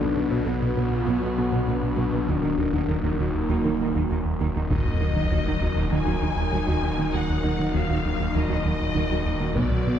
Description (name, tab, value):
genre	cinematic, hybrid orchestral and electronic film score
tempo	99 BPM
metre	4/4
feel	straight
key	Eb harmonic minor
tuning	A4 = 437 Hz
part	warm symphonic viola section	accompaniment	0.0-10.0 s	D3 to F#4	-31 LUFS	right 3 dB	none
part	hollow soft pad	sustained chords	0.0-10.0 s	F#3 to B4	-32 LUFS	left 1 dB	chorus
part	mellow French horn section	sustained chords	0.0-4.1 s	D4 to F#4	-28 LUFS	left 5 dB	none
part	tight sequenced synth	arpeggios	0.0-10.0 s	Eb3 to B4	-33 LUFS	right 1 dB	none
part	rubbery square bass	riff	0.0-10.0 s	Eb2 to B3	-27 LUFS	right 1 dB	none
part	rich symphonic cello section	bass	0.0-9.9 s	B2 to Eb3	-31 LUFS	right 2 dB	none
part	snarling distorted saw bass	bass	0.0-10.0 s	Eb1 to B1	-30 LUFS	equal	none
part	dark symphonic violin section	melody	4.7-10.0 s	D5 to Ab5	-31 LUFS	left 4 dB	none
part	taiko ensemble	drums	4.7-5.9, 9.6-10.0 s	none	-29 LUFS	equal	none
part	sub drop	sound effects	4.7-7.1 s	none	-29 LUFS	left 1 dB	none
room	wet concert hall reverb, RT60 2.3 s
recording	heard from further back in the room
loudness	-22 LUFS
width	side -9 dB against mid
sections	0.0-4.7 A section; 4.7-10.0 B section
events	impact 4.7-7.1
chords	0.0 Bm; 2.3 Ebm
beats	0.47 1.07 1.68 | 2.29 2.89 3.50 4.10 | 4.71 5.32 5.92 6.53 | 7.13 7.74 8.35 8.95 | 9.56